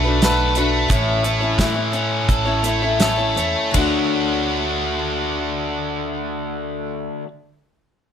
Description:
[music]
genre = folk rock and heartland rock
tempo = 79-91 BPM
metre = 4/4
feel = straight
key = D major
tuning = A4 = 440 Hz
[part]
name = picked steel-string acoustic guitar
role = accompaniment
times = 0.0-7.3 s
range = A2 to C#5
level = -23 LUFS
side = left 4 dB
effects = none
[part]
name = biting overdriven guitar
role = riff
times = 0.0-7.3 s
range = A2 to A4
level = -21 LUFS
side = right 1 dB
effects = none
[part]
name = upright bass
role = bass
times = 0.0-7.1 s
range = A1 to A2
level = -25 LUFS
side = right 1 dB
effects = none
[part]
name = damped 70s drum kit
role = drums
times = 0.2-3.9 s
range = hi-hat, kick drum, ride cymbal, snare drum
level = -20 LUFS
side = right 1 dB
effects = none
[sound]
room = light reverb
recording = none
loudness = -17 LUFS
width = side -8 dB against mid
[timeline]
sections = 0.0-3.7 A section; 3.7-6.8 B section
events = slowing down 0.0-3.7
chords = 0.0 Bm7; 0.9 A; 3.7 Dmaj7

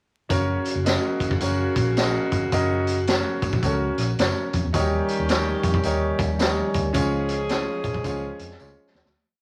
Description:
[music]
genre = uptempo 1960s-style soul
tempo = 108 BPM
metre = 4/4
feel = swing 63% on 8ths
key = F# major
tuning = A4 = 443 Hz
[part]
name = bright saxophone section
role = second line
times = 0.3-8.9 s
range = C#3 to G#4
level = -32 LUFS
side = equal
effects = none
[part]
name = warm upright piano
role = accompaniment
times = 0.3-9.0 s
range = C#4 to D#5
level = -29 LUFS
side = equal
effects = none
[part]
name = vintage muted fingered electric bass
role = bass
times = 0.3-9.1 s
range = F#1 to E#2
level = -29 LUFS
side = equal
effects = none
[part]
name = raw garage drum kit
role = drums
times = 0.3-9.1 s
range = hi-hat, kick drum, snare drum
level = -28 LUFS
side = equal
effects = none
[part]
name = tambourine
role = percussion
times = 0.3-9.0 s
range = none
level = -44 LUFS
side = equal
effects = none
[part]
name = percussive tonewheel organ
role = sustained chords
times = 4.7-9.1 s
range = D#3 to C#4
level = -31 LUFS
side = equal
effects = slow rotary speaker
[sound]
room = moderate studio reverb, RT60 0.5 s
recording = vinyl crackle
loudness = -23 LUFS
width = mono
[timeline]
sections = 0.3-9.2 verse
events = fade-out 7.0-9.2; drum fill 8.6-9.2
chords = 0.3 F#; 4.7 D#7; 7.0 C#

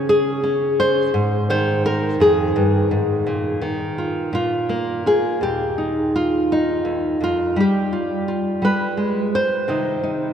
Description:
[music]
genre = folk, solo fingerstyle acoustic guitar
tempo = 56 BPM (dotted quarters)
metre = 6/8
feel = straight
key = Eb major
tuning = A4 = 440 Hz
[part]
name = nylon-string guitar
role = solo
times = 0.0-10.3 s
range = Eb2 to Db5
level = -17 LUFS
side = equal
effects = none
[sound]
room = wet cathedral reverb, RT60 5.2 s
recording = in a vast, echoing space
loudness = -17 LUFS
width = side -8 dB against mid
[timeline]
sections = 0.0-5.4 A section; 5.4-10.3 B section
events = none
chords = 0.0 Db5; 1.1 Ab5; 3.3 Bbsus4; 4.3 Bb5; 5.4 Eb; 7.6 G7; 9.7 Cm

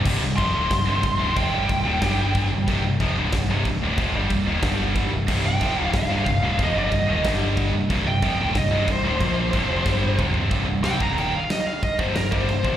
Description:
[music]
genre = heavy metal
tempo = 184 BPM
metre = 4/4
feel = straight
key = C minor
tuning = A4 = 440 Hz
[part]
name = distorted electric guitar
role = riff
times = 0.0-12.8 s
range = C2 to C4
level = -26 LUFS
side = left 7 dB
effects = overdrive, slapback echo
[part]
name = heavy high-gain guitar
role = riff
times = 0.0-12.8 s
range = C2 to C4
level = -27 LUFS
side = right 10 dB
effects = distortion, slapback echo
[part]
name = growling picked electric bass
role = bass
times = 0.0-12.8 s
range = C1 to C2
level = -25 LUFS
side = equal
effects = overdrive
[part]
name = big rock drum kit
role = drums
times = 0.1-12.7 s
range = china cymbal, crash cymbal, kick drum, snare drum, toms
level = -26 LUFS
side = equal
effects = none
[part]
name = high-gain lead guitar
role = melody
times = 0.4-2.5, 5.5-12.8 s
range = Bb4 to C6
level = -26 LUFS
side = equal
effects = distortion, slapback echo, digital delay
[sound]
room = small room ambience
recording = live gig heard through the venue's PA, recital hall reverb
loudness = -19 LUFS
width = side -11 dB against mid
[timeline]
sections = 0.0-10.5 A section; 10.5-12.8 B section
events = half time 0.0-10.5; drum fill 9.9-10.5; lead electric guitar solo 10.5-12.8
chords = 0.0 Cm; 2.0 G5; 2.5 Cm; 4.6 G5; 5.1 Cm; 7.2 G5; 7.7 Cm; 9.2 Bb5; 9.5 C5; 9.9 G5; 10.2 C5; 10.5 Cm

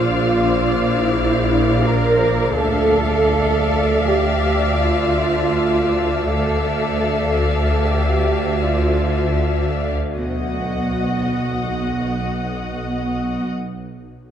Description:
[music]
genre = cinematic, suspense film score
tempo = free time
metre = none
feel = none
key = unclear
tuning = A4 = 439 Hz
[part]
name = muted symphonic violin section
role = melody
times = 0.0-13.5 s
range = E#5 to F#5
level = -27 LUFS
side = left 3 dB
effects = none
[part]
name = muted symphonic violin section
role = second line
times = 0.0-13.5 s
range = F#4 to E5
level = -25 LUFS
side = left 2 dB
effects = none
[part]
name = muted studio double bass section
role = bass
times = 0.0-13.5 s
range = A#1 to D2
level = -22 LUFS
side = right 2 dB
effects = none
[part]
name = muted symphonic cello section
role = bass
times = 0.0-13.5 s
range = B3 to A#4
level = -21 LUFS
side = right 1 dB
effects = none
[part]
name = swarming drone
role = drone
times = 0.0-13.4 s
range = A#1 to D2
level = -24 LUFS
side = left 1 dB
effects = built-in reverb
[part]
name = muted studio violin section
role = texture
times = 0.0-13.6 s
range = A5 to A#6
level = -32 LUFS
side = left 4 dB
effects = none
[sound]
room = moderate scoring stage reverb, RT60 1.8 s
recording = dark, warm production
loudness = -16 LUFS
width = side -9 dB against mid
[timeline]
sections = 0.0-10.2 A section; 10.2-14.0 B section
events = none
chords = 0.0 A#add9; 2.6 Dmadd9; 10.2 B

